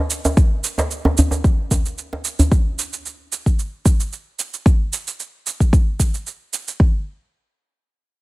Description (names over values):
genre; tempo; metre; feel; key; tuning
organic downtempo; 112 BPM; 4/4; swing 53% on 16ths; none; none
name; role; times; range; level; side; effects
cabasa; drums; 0.1-6.8 s; none; -25 LUFS; right 6 dB; small room ambience
djembe; percussion; 0.2-2.5 s; none; -18 LUFS; equal; none
electronic kick drum; drums; 0.4-6.9 s; none; -15 LUFS; equal; small room ambience
room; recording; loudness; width
digital ambience; none; -17 LUFS; side -21 dB against mid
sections
0.0-6.8 A section; 6.8-8.2 B section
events
none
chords
none